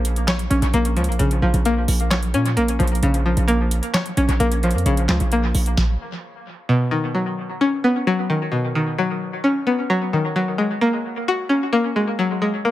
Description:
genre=hip hop, trap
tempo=131 BPM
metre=4/4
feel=half-time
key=Bb phrygian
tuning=A4 = 441 Hz
part: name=string-like resonator pluck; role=accompaniment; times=0.0-12.7 s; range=B2 to Db5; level=-20 LUFS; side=left 1 dB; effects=chorus, dub echo
part: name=hard-hitting 808-style bass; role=bass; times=0.0-5.8 s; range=Bb1 to Bb2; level=-19 LUFS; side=right 1 dB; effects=none
part: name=booming analog drum machine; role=drums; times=0.0-6.0 s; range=handclaps, hi-hat, kick drum, snare drum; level=-26 LUFS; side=right 1 dB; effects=dub echo
room=light reverb, digital ambience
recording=echo-heavy mix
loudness=-18 LUFS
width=side -14 dB against mid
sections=0.0-6.7 A section; 6.7-12.7 B section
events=stop 5.8-6.7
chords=0.0 Bbm; 6.7 Badd9; 10.4 Gbadd9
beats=0.28 0.74 | 1.20 1.65 2.11 2.57 | 3.03 3.48 3.94 4.40 | 4.86 5.32 5.78 6.23 | 6.69 7.15 7.61 8.07 | 8.52 8.98 9.44 9.90 | 10.36 10.81 11.27 11.73 | 12.19 12.65

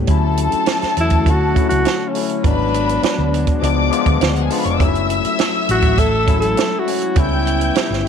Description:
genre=lush 1970s-style soul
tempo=102 BPM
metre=4/4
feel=straight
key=D major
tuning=A4 = 440 Hz
part: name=overdriven tine electric piano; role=accompaniment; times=0.0-8.1 s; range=E#3 to F#4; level=-22 LUFS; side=left 14 dB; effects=none
part: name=soft string machine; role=sustained chords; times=0.0-8.1 s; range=C#3 to B4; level=-25 LUFS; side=equal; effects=ensemble chorus
part: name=hollow-body short-scale fingered electric bass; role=bass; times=0.0-8.1 s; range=E#1 to E2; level=-20 LUFS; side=equal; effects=none
part: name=warm studio string section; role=second line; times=0.1-8.0 s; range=F#4 to G6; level=-22 LUFS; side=left 3 dB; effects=none
part: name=compact cocktail drum kit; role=drums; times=0.1-8.0 s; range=hi-hat, kick drum, snare drum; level=-19 LUFS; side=right 3 dB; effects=none
part: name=mellow alto saxophone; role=melody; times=1.0-8.1 s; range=C#4 to A4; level=-20 LUFS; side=right 1 dB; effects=none
room=light reverb, studio ambience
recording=1960s-style stereo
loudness=-14 LUFS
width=side -7 dB against mid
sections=0.1-8.1 A section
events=alto saxophone solo 0.1-8.1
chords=0.1 Dmaj9; 2.4 G#m7b5; 3.6 C#7b9; 4.8 F#m7; 7.2 C#m7b5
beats=| 0.09 0.68 1.27 1.86 | 2.44 3.04 3.62 4.21 | 4.80 5.40 5.99 6.58 | 7.17 7.76

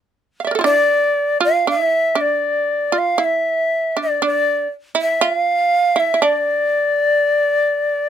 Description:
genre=japanese traditional, Japanese chamber music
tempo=60 BPM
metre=2/4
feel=rubato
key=D hirajoshi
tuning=A4 = 439 Hz
part: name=shamisen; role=second line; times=0.4-8.1 s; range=D4 to F5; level=-20 LUFS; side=right 5 dB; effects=none
part: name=bright shakuhachi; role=melody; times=0.7-8.1 s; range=D5 to F5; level=-15 LUFS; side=equal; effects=none
room=light reverb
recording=close, detailed microphones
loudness=-15 LUFS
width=side -9 dB against mid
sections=0.0-8.1 A section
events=none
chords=none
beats=| 0.15 1.15 | 2.19 3.21 | 4.22 5.22 | 6.22 7.20

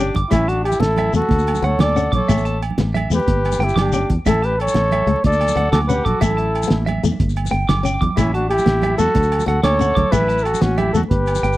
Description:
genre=highlife guitar band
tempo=122 BPM (dotted quarters)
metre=12/8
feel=straight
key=A mixolydian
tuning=A4 = 440 Hz
part: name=trumpet with bucket mute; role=melody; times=0.0-11.6 s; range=E4 to D5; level=-20 LUFS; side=equal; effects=none
part: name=growling trumpet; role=second line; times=0.0-11.6 s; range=C#4 to A4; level=-28 LUFS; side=left 5 dB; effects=none
part: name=flamenco guitar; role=accompaniment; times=0.0-11.6 s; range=A3 to C#4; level=-25 LUFS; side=left 6 dB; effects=none
part: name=clean electric guitar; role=arpeggios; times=0.0-11.6 s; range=E5 to D6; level=-26 LUFS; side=right 4 dB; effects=tape echo
part: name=fingered electric bass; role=bass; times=0.0-11.6 s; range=G1 to E2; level=-20 LUFS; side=equal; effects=none
part: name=cloth-damped thuddy drum kit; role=drums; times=0.0-11.5 s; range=hi-hat, kick drum, snare drum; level=-21 LUFS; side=equal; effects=none
part: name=congas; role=percussion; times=0.1-11.4 s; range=none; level=-25 LUFS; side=right 5 dB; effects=none
part: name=agogo bells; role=percussion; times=0.3-11.4 s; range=none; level=-32 LUFS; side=right 8 dB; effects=none
part: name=shekere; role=percussion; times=0.3-11.6 s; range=none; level=-27 LUFS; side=left 4 dB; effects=none
room=little or no reverb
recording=dry, close 1970s-style studio recording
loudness=-15 LUFS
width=side -16 dB against mid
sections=0.0-11.6 A section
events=none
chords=0.3 A5; 1.3 D; 2.3 A; 3.3 G; 4.3 A; 5.2 D; 6.2 A5; 7.2 G; 8.2 A5; 9.2 D; 10.1 A5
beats=| 0.33 0.82 1.31 1.80 | 2.29 2.79 3.28 3.77 | 4.26 4.75 5.24 5.73 | 6.22 6.71 7.20 7.69 | 8.18 8.67 9.16 9.65 | 10.13 10.62 11.11

